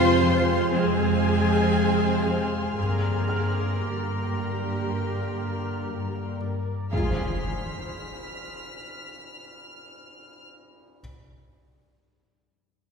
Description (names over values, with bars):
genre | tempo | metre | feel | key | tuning
cinematic | 59 BPM | 4/4 | straight | F dorian | A4 = 440 Hz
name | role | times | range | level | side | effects
warm studio violin section | melody | 0.0-7.5 s | Ab4 to C5 | -39 LUFS | left 2 dB | none
warm chamber violin section | second line | 0.0-7.5 s | F5 to C6 | -34 LUFS | left 1 dB | none
rich studio viola section | accompaniment | 0.0-7.5 s | Bb3 to F4 | -32 LUFS | right 2 dB | none
bubbling stepped-filter texture | sustained chords | 0.0-7.5 s | Ab4 to C6 | -37 LUFS | left 2 dB | chorus, built-in reverb
mellow French horn section | sustained chords | 0.0-7.4 s | G3 to Ab4 | -30 LUFS | left 3 dB | none
warm trombone section | sustained chords | 0.0-7.4 s | C3 to Bb3 | -34 LUFS | right 5 dB | none
concert harp | riff | 0.0-7.0 s | F2 to C4 | -30 LUFS | left 2 dB | none
dark studio cello section | bass | 0.0-7.5 s | F4 to C5 | -31 LUFS | left 1 dB | none
warm studio double bass section | bass | 0.0-7.5 s | F2 to G2 | -29 LUFS | right 4 dB | none
rich studio violin section | texture | 0.0-10.4 s | C6 to B6 | -38 LUFS | left 3 dB | none
warm concert grand piano | texture | 3.3-6.9 s | F6 | -43 LUFS | right 1 dB | none
timpani | percussion | 6.9-7.4 s | F2 | -37 LUFS | left 2 dB | none
impact | sound effects | 6.9-11.0 s | none | -35 LUFS | equal | none
room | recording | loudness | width
wet scoring stage reverb, RT60 1.8 s | heard from further back in the room | -23 LUFS | side -5 dB against mid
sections
0.0-6.9 A section; 6.9-11.0 B section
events
impact 6.9-11.0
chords
0.0 Fm; 2.8 Gm; 6.9 Fm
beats
0.72 1.74 | 2.77 3.81 4.85 5.89 | 6.92 7.94 8.95 9.97